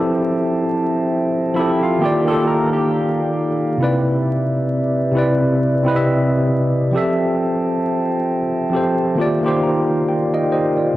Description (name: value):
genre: hip hop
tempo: 67 BPM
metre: 4/4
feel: swing 58% on 16ths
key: unclear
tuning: A4 = 440 Hz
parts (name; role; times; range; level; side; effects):
- tine electric piano; accompaniment; 0.0-11.0 s; C3 to Bb5; -17 LUFS; equal; medium stereo tremolo, cassette tape
- glass harmonica; sustained chords; 0.0-11.0 s; Bb3 to A5; -22 LUFS; equal; cassette tape
- electric guitar through a small old amp; second line; 1.6-3.8 s; E4 to Bb4; -25 LUFS; equal; warbly pitch drift, cassette tape, tape echo
room: moderate spring reverb, RT60 2.9 s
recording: home recording on cassette, vinyl crackle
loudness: -16 LUFS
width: side -15 dB against mid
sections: 0.0-11.0 A section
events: tine electric piano fill 9.2-11.0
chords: 0.0 Fmaj7; 2.0 Ebmaj7; 3.8 Cmaj7; 6.9 Fmaj7; 9.2 Ebmaj7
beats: | 0.22 1.12 2.01 2.91 | 3.80 4.70 5.59 6.49 | 7.38 8.28 9.18 10.07